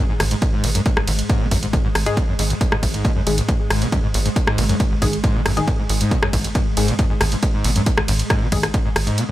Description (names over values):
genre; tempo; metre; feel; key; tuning
driving peak-time techno; 137 BPM; 4/4; straight; G# minor; A4 = 441 Hz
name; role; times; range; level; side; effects
screaming distorted acid line; riff; 0.0-9.3 s; G#1 to B2; -24 LUFS; equal; distortion, lush chorus, vintage 12-bit sampler grit, sidechain pumping, digital delay
swarming drone; drone; 0.1-9.3 s; G#2 to G#3; -28 LUFS; equal; built-in reverb, sidechain pumping
tight sequencer bass; bass; 0.2-9.1 s; G#1; -22 LUFS; equal; sidechain pumping
punchy analog drum machine; drums; 0.2-9.3 s; hi-hat, ride cymbal, rim click; -24 LUFS; right 1 dB; overdrive
electronic kick drum; drums; 0.4-8.8 s; none; -20 LUFS; equal; none
filtered dub chord stab; stabs; 2.1-8.7 s; D#3 to G#4; -28 LUFS; left 3 dB; analog chorus, sidechain pumping, digital delay
room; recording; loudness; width
digital ambience; none; -16 LUFS; side -15 dB against mid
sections
0.0-9.3 A section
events
none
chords
0.0 G#5